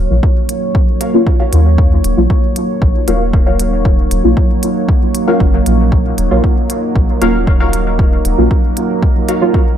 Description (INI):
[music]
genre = dub techno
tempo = 116 BPM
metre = 4/4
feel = straight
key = Eb minor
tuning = A4 = 440 Hz
[part]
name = deep dark ambient pad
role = sustained chords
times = 0.0-9.8 s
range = Gb3 to Db5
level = -17 LUFS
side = right 2 dB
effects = chorus, built-in reverb, sidechain pumping
[part]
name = soft dub sub bass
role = bass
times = 0.0-8.5 s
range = Eb1 to Eb2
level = -14 LUFS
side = equal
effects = sidechain pumping
[part]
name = deep mellow chord stab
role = stabs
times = 0.1-9.6 s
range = Gb3 to F4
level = -17 LUFS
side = equal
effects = chorus, phaser, dub echo
[part]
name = electronic kick drum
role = drums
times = 0.2-9.6 s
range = none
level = -12 LUFS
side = equal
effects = none
[part]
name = electronic hi-hat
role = drums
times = 0.5-9.4 s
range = none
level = -22 LUFS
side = right 2 dB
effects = none
[part]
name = filtered dub chord stab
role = riff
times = 1.0-9.4 s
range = Gb4 to F5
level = -22 LUFS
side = left 3 dB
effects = phaser, lush chorus, cassette tape, sidechain pumping, dub echo
[sound]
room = light reverb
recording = none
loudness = -10 LUFS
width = side -10 dB against mid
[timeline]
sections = 0.0-9.8 A section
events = filter sweep on synth stab 0.0-9.8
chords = 0.0 Ebm7